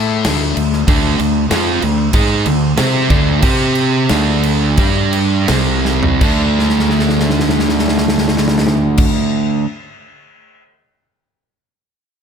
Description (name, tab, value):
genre	hard rock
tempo	81-96 BPM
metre	4/4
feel	straight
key	D minor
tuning	A4 = 439 Hz
part	sludgy distorted guitar	riff	0.0-9.6 s	C3 to C5	-18 LUFS	left 11 dB	overdrive
part	fuzz fingered electric bass	bass	0.0-9.1 s	C2 to C3	-19 LUFS	equal	overdrive
part	big rock drum kit	drums	0.2-10.6 s	crash cymbal, kick drum, snare drum, toms	-18 LUFS	equal	none
part	sludgy distorted guitar	riff	0.9-9.7 s	C3 to C5	-16 LUFS	right 11 dB	overdrive
room	light reverb, small room reverb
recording	none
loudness	-12 LUFS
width	side -7 dB against mid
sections	0.0-6.2 A section; 6.2-9.2 B section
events	slowing down 0.9-6.2; drum fill 5.9-6.2, 6.6-9.0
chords	0.0 Dm; 3.4 C5; 4.1 D5; 4.8 G5; 5.5 C5; 6.2 D5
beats	0.25 | 0.88 1.51 2.14 2.79 | 3.44 4.11 4.79 5.50 | 6.22 6.96 7.70 8.44